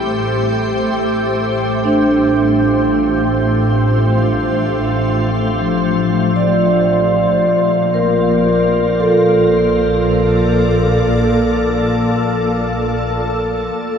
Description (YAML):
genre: ambient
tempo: 56 BPM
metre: 3/4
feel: straight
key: unclear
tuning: A4 = 441 Hz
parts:
  - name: soft additive organ-like pad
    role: sustained chords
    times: 0.0-14.0 s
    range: A3 to D5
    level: -17 LUFS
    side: equal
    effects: ensemble chorus, built-in reverb
  - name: bright studio double bass section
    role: bass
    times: 0.0-14.0 s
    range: A1 to D2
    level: -20 LUFS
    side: equal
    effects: none
  - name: vibraphone with medium mallets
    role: arpeggios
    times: 1.5-13.8 s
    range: F3 to D5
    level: -16 LUFS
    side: right 1 dB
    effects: ping-pong delay
room: wet cathedral reverb, RT60 5.2 s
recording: in a vast, echoing space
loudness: -13 LUFS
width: side -7 dB against mid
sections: 0.0-13.8 A section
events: none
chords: 0.0 Am7; 1.0 Fadd9/A; 7.4 Bbmaj7